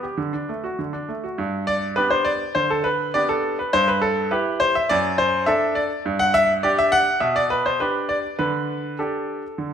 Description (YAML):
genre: classical-period piano sonatina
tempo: 102 BPM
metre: 4/4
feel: straight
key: G major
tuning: A4 = 440 Hz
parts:
  - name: bright baby grand piano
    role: solo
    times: 0.0-9.7 s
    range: F#2 to F#5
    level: -19 LUFS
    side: equal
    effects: none
room: moderate recital hall reverb, RT60 1.4 s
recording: minimal, uncompressed stereo recording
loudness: -19 LUFS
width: side -8 dB against mid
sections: 0.0-1.4 A section; 1.4-9.7 B section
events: none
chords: 0.2 D; 1.4 G; 3.7 G69; 4.9 D/F#; 6.0 G5; 7.2 G/B; 8.4 Dsus4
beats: 0.18 0.78 | 1.38 1.97 2.56 3.15 | 3.73 4.31 4.89 5.47 | 6.05 6.63 7.20 7.79 | 8.38 8.98 9.57